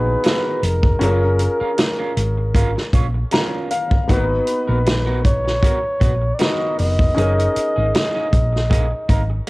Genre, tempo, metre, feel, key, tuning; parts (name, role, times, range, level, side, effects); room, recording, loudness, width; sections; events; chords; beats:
lush 1970s-style soul; 78 BPM; 4/4; swing 54% on 16ths; A4 = 444 Hz
breathy flugelhorn; melody; 0.0-9.4 s; A#4 to D#5; -22 LUFS; equal
warm baby grand piano; accompaniment; 0.0-9.5 s; A#3 to A#5; -25 LUFS; left 2 dB; cassette tape
hollow-body short-scale fingered electric bass; bass; 0.0-9.4 s; E#1 to A#1; -20 LUFS; equal
electric guitar through a small old amp; riff; 0.1-9.5 s; A#3 to C#5; -29 LUFS; right 4 dB; cassette tape
vintage drum kit; drums; 0.2-9.5 s; hi-hat, kick drum, snare drum; -19 LUFS; equal; cassette tape
studio reverb; home recording on cassette; -16 LUFS; side -22 dB against mid
0.0-9.5 A section
grand piano fill 2.9-4.1
0.0 G#m9; 1.0 F#maj7; 4.1 G#m9 (rootless); 7.2 F#69
0.24 | 1.01 1.78 2.55 3.32 | 4.09 4.86 5.63 6.40 | 7.17 7.94 8.71 9.48